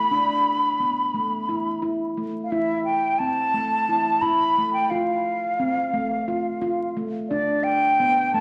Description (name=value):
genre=contemporary instrumental, contemporary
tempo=175 BPM (eighths)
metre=7/8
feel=straight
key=A minor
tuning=A4 = 440 Hz
part: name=reedy concert flute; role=melody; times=0.0-8.4 s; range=D5 to B5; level=-24 LUFS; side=equal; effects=none
part: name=handpan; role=arpeggios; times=0.1-8.4 s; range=A3 to F4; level=-29 LUFS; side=equal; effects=none
room=wet scoring stage reverb, RT60 1.6 s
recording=vinyl crackle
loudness=-23 LUFS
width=mono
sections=0.0-2.5 A section; 2.5-8.4 B section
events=none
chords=0.1 D5; 1.8 A5; 4.9 F; 7.3 D5